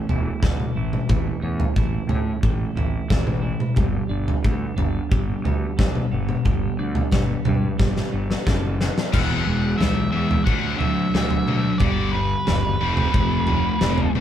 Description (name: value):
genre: quiet-loud alternative rock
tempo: 90 BPM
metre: 4/4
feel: straight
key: unclear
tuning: A4 = 436 Hz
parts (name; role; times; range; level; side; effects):
- twelve-string electric guitar; arpeggios; 0.0-14.2 s; E2 to A4; -30 LUFS; equal; none
- fuzz fingered electric bass; bass; 0.1-14.2 s; E1 to A2; -26 LUFS; equal; overdrive
- big rock drum kit; drums; 0.1-14.2 s; crash cymbal, kick drum, snare drum, toms; -22 LUFS; equal; none
- octave-fuzz lead guitar; melody; 9.1-14.1 s; B4 to F#5; -27 LUFS; right 2 dB; distortion
- scooped high-gain guitar; riff; 9.1-14.2 s; G2 to C4; -24 LUFS; left 4 dB; distortion
room: light reverb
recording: band playing live in one room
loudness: -19 LUFS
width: side -10 dB against mid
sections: 0.0-9.1 A section; 9.1-14.2 B section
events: drum fill 7.8-9.1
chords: 0.0 A; 3.8 Gadd9; 9.1 E; 10.5 D; 11.8 G; 12.8 F